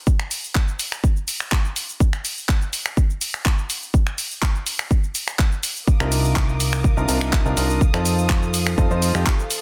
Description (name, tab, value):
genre	piano house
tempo	124 BPM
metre	4/4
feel	straight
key	C dorian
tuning	A4 = 440 Hz
part	electronic kick drum	drums	0.1-9.4 s	none	-21 LUFS	equal	none
part	house drum kit	drums	0.1-9.6 s	finger snaps, handclaps, hi-hat, shaker	-27 LUFS	equal	soft clipping on snare
part	rich studio string section	sustained chords	5.9-9.6 s	A4 to Eb6	-35 LUFS	equal	sidechain pumping
part	clear baby grand piano	riff	6.0-9.3 s	C3 to C5	-27 LUFS	equal	sidechain pumping, delay
part	plucky analog bass	bass	6.0-9.2 s	C2 to F2	-24 LUFS	equal	sidechain pumping
room	little or no reverb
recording	dense, heavily limited modern master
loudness	-21 LUFS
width	mono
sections	0.0-9.6 A section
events	none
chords	0.0 N.C.; 5.9 Cm11; 7.8 F7